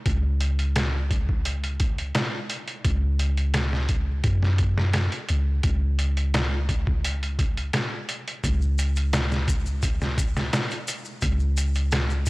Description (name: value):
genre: trip hop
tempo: 86 BPM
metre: 4/4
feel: straight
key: unclear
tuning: A4 = 441 Hz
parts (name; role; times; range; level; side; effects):
- soft 808-style bass; bass; 0.1-12.3 s; C#2 to F#2; -24 LUFS; equal; tube saturation
- trip hop sampler-style drum kit; drums; 0.1-12.3 s; hi-hat, kick drum, snare drum; -25 LUFS; equal; none
- maracas; percussion; 8.4-12.3 s; none; -38 LUFS; left 3 dB; none
room: digital ambience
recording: blown-out, overdriven recording, vinyl crackle, overdrive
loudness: -22 LUFS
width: side -22 dB against mid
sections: 0.0-12.3 A section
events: none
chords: none